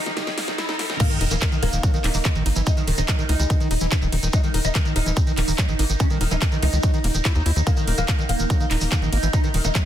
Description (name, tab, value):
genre	psychedelic trance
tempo	144 BPM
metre	4/4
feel	straight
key	Eb phrygian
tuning	A4 = 440 Hz
part	oud	melody	0.0-9.8 s	Eb3 to Eb4	-29 LUFS	equal	phaser, vintage 12-bit sampler grit, sidechain pumping, digital delay
part	evolving wavetable pad	sustained chords	0.0-9.9 s	Eb4	-32 LUFS	right 2 dB	chorus, built-in reverb, phaser, sidechain pumping
part	tight sequencer bass	bass	0.0-9.7 s	Eb1 to Eb2	-22 LUFS	equal	high-pass filter
part	riser and sub drop	sound effects	0.0-2.7 s	none	-32 LUFS	equal	none
part	overdriven acid bass	riff	0.1-9.8 s	Db3 to Fb4	-29 LUFS	moving between left 5 dB and right 6 dB	distortion, auto-pan, sidechain pumping, ping-pong delay
part	big-room dance drum kit	drums	0.1-9.8 s	crash cymbal, handclaps, hi-hat, ride cymbal, snare drum	-28 LUFS	equal	none
part	electronic kick drum	drums	1.0-9.8 s	none	-21 LUFS	equal	none
part	shekere	percussion	1.0-9.8 s	none	-32 LUFS	right 3 dB	none
part	resonant blip pluck	second line	2.0-6.2, 8.7-8.9 s	Ab3 to Bb3	-38 LUFS	left 3 dB	phaser, sidechain pumping, high-pass filter, dub echo
room	digital ambience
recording	dense, heavily limited modern master, high-pass filter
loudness	-19 LUFS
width	side -11 dB against mid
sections	0.0-1.0 A section; 1.0-9.9 B section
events	build-up 0.0-1.0; drum fill 0.0-1.0; riser 0.0-1.0; drop 1.0-9.9; impact 1.0-2.7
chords	0.0 Eb5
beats	0.17 0.58 | 1.00 1.42 1.83 2.25 | 2.67 3.08 3.50 3.92 | 4.33 4.75 5.17 5.58 | 6.00 6.42 6.83 7.25 | 7.67 8.08 8.50 8.92 | 9.33 9.75